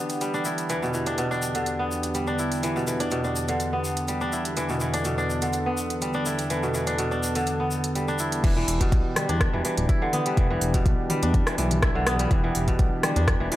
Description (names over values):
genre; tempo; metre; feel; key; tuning
afro house; 124 BPM; 4/4; straight; E minor; A4 = 442 Hz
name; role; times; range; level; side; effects
warm analog pad; sustained chords; 0.0-13.6 s; E2 to A4; -30 LUFS; equal; chorus, sidechain pumping
kora; arpeggios; 0.0-13.6 s; B2 to E4; -26 LUFS; equal; vintage 12-bit sampler grit, sidechain pumping, tape echo
afro-pop drum kit; drums; 0.1-13.6 s; crash cymbal, hi-hat, rim click, toms; -29 LUFS; equal; small room reverb
egg shaker; percussion; 0.1-8.4 s; none; -36 LUFS; left 2 dB; none
smooth gliding synth bass; bass; 8.4-13.5 s; D1 to E2; -26 LUFS; equal; sidechain pumping
electronic kick drum; drums; 8.4-13.4 s; none; -22 LUFS; equal; small room reverb
room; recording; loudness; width
light reverb; none; -22 LUFS; side -14 dB against mid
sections
0.0-8.4 A section; 8.4-13.6 B section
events
drop 8.4-13.6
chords
0.0 Em7; 0.7 G/E; 8.4 Em7